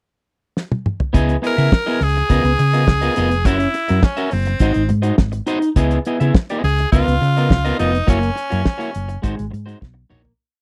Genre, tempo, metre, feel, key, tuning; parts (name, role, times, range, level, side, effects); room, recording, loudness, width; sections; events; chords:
disco; 104 BPM; 4/4; straight; C# dorian; A4 = 441 Hz
damped 70s drum kit; drums; 0.6-10.4 s; hi-hat, kick drum, snare drum, toms; -18 LUFS; equal
electric guitar at the edge of break-up; accompaniment; 1.1-10.3 s; G#3 to E5; -23 LUFS; equal
hollow-body short-scale fingered electric bass; bass; 1.1-10.3 s; E#1 to C#3; -21 LUFS; equal
raspy tenor saxophone; melody; 1.5-9.2 s; B#3 to A#4; -23 LUFS; equal
little or no reverb; dry, close 1970s-style studio recording; -17 LUFS; mono
0.0-1.1 pickup bar; 1.1-10.4 verse
drum fill 0.6-1.1, 9.8-10.4; fade-out 8.1-10.4
0.0 N.C.; 1.1 C#m9; 2.3 C#13; 3.4 F#7; 4.6 G#7; 5.8 C#m9; 6.9 C#13; 8.1 F#7; 9.2 G#7; 9.8 Bmaj9